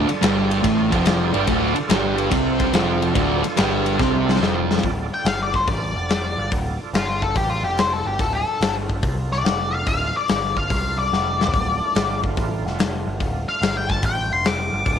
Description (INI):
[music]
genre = blues rock power trio and southern rock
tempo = 143 BPM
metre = 4/4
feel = swing 68% on 8ths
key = D minor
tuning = A4 = 438 Hz
[part]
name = overdriven tonewheel organ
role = sustained chords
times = 0.0-15.0 s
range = A3 to D5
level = -31 LUFS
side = right 11 dB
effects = slow rotary speaker, chorus vibrato
[part]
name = fuzz guitar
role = riff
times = 0.0-4.8 s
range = D2 to C4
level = -19 LUFS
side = right 1 dB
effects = distortion
[part]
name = growling picked electric bass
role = bass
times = 0.0-15.0 s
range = D1 to C2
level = -26 LUFS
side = right 1 dB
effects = overdrive
[part]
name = big rock drum kit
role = drums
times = 0.1-15.0 s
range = hi-hat, kick drum, ride cymbal, snare drum, toms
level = -23 LUFS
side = left 3 dB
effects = none
[part]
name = octave-fuzz lead guitar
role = melody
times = 5.1-15.0 s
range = F4 to D6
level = -23 LUFS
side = left 3 dB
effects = distortion
[sound]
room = light reverb, small room ambience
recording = 1960s-style stereo, lossy compression artefacts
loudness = -18 LUFS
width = side -8 dB against mid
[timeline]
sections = 0.0-4.8 A section; 4.8-15.0 B section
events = drum fill 4.0-4.8, 11.1-11.5; lead electric guitar solo 4.8-15.0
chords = 0.0 Dm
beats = 0.22 0.64 1.05 | 1.47 1.89 2.31 2.73 | 3.15 3.57 3.99 4.41 | 4.83 5.25 5.67 6.09 | 6.51 6.93 7.35 7.77 | 8.19 8.61 9.03 9.45 | 9.87 10.28 10.70 11.12 | 11.53 11.95 12.37 12.78 | 13.20 13.61 14.03 14.44 | 14.86